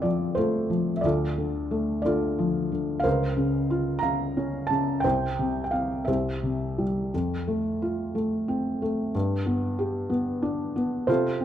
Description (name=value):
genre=classical, lyrical solo piano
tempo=57-62 BPM (dotted quarters)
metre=6/8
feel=rubato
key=F major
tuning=A4 = 440 Hz
part: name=felt-muted upright piano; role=solo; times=0.0-11.4 s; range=C2 to Bb5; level=-24 LUFS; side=equal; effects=none
room=light reverb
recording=dark, warm production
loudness=-24 LUFS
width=side -10 dB against mid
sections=0.0-11.4 A section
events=none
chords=0.0 F; 1.0 Dm; 3.0 Bbmadd9/Db; 5.0 N.C.; 6.1 C; 7.1 F; 9.1 G